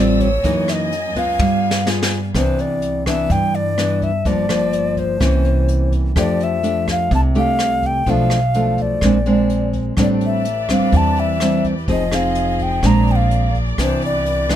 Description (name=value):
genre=bossa nova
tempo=126 BPM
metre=4/4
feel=straight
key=C major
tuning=A4 = 440 Hz
part: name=alto ocarina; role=melody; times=0.0-14.6 s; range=C5 to Bb5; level=-21 LUFS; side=left 1 dB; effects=none
part: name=nylon-string guitar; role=accompaniment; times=0.0-14.6 s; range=Gb2 to Ab4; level=-19 LUFS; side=equal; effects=none
part: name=warm symphonic violin section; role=sustained chords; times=0.0-2.3, 10.0-14.6 s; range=Bb3 to E6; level=-29 LUFS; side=equal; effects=none
part: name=upright bass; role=bass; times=0.0-14.6 s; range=F1 to G2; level=-21 LUFS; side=equal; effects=none
part: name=jazz brush drum kit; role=drums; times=0.2-14.6 s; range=hi-hat, kick drum, rim click, snare drum, toms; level=-24 LUFS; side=equal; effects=none
room=little or no reverb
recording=close, detailed microphones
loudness=-15 LUFS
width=side -11 dB against mid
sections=0.0-2.3 A section; 2.3-14.6 B section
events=drum fill 1.4-2.3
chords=0.4 Gb13; 1.4 G7b9; 2.3 Cmaj9; 4.3 Gm7; 5.2 C7b9; 6.2 F69; 8.1 Bm7b5; 9.0 Bb9; 10.0 Am11; 11.9 Fm7; 12.8 Bb9; 13.8 Cmaj9